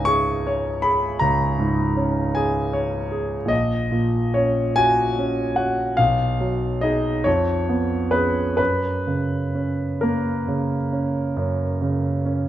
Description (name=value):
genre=classical, romantic nocturne for solo piano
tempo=41-54 BPM (dotted quarters)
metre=12/8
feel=rubato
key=F# major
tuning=A4 = 440 Hz
part: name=clear concert grand piano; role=solo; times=0.0-12.5 s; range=A#1 to C#6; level=-19 LUFS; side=equal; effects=none
room=light reverb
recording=minimal, uncompressed stereo recording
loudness=-19 LUFS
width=side -12 dB against mid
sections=0.0-12.5 A section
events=none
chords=0.0 C#5; 3.5 F#/A#; 6.0 G#m7/B; 7.3 C#7/E#; 8.6 F#